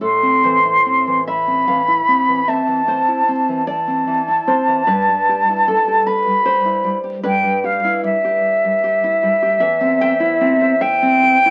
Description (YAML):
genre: romantic duo for flute and classical guitar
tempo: 50 BPM (dotted quarters)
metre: 12/8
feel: rubato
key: A minor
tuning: A4 = 440 Hz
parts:
  - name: concert flute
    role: melody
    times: 0.0-11.5 s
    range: E5 to C6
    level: -17 LUFS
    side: equal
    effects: none
  - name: nylon-string guitar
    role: accompaniment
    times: 0.0-11.5 s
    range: E2 to G5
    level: -23 LUFS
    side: equal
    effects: none
room: moderate small room ambience, RT60 0.5 s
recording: very old 78 rpm record, vinyl crackle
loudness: -16 LUFS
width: mono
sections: 0.0-11.5 A section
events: none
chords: 0.0 Am; 4.9 Em/G; 9.6 C/E